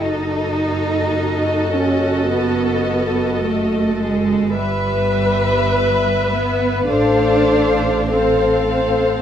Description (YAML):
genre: classical, slow romantic movement for string orchestra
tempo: 52 BPM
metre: 4/4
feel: rubato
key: unclear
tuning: A4 = 441 Hz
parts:
  - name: warm chamber violin section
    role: melody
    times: 0.0-9.2 s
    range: D#5 to F5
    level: -25 LUFS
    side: left 3 dB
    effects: none
  - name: dark chamber violin section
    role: second line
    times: 0.0-9.2 s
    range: A4 to C5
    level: -22 LUFS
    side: left 2 dB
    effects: none
  - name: rich chamber viola section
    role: accompaniment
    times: 0.0-9.2 s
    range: F#4 to B4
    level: -21 LUFS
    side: left 1 dB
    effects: none
  - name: warm chamber double bass section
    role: bass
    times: 0.0-9.2 s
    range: F#1 to A1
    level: -23 LUFS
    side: right 2 dB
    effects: none
  - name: warm studio cello section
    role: bass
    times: 0.0-9.2 s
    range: G3 to D#4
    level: -20 LUFS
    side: right 2 dB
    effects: none
room: light reverb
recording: none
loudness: -15 LUFS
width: side -9 dB against mid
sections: 0.0-9.2 A section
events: none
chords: 0.0 D#dim/F#; 4.6 Em/G; 6.9 F/A